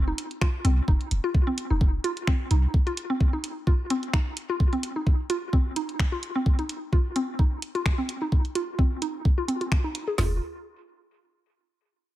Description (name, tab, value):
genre	minimal techno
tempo	129 BPM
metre	4/4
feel	swing 55% on 16ths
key	unclear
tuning	A4 = 438 Hz
part	punchy sub bass	bass	0.0-2.7, 10.2-10.4 s	F1 to C2	-23 LUFS	equal	sidechain pumping
part	mallet-like synth pluck	riff	0.1-10.4 s	C4 to Ab4	-29 LUFS	equal	chorus, sidechain pumping, dub echo
part	punchy analog drum machine	drums	0.2-10.1 s	finger snaps, hi-hat	-33 LUFS	equal	none
part	garage drum kit	drums	0.4-10.3 s	hi-hat, kick drum, snare drum, toms	-22 LUFS	equal	overdrive
room	little or no reverb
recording	echo-heavy mix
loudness	-23 LUFS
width	side -15 dB against mid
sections	0.0-10.2 A section; 10.2-12.0 B section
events	filter sweep on synth arpeggio sound 0.0-10.2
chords	0.0 F7(no3); 10.2 N.C.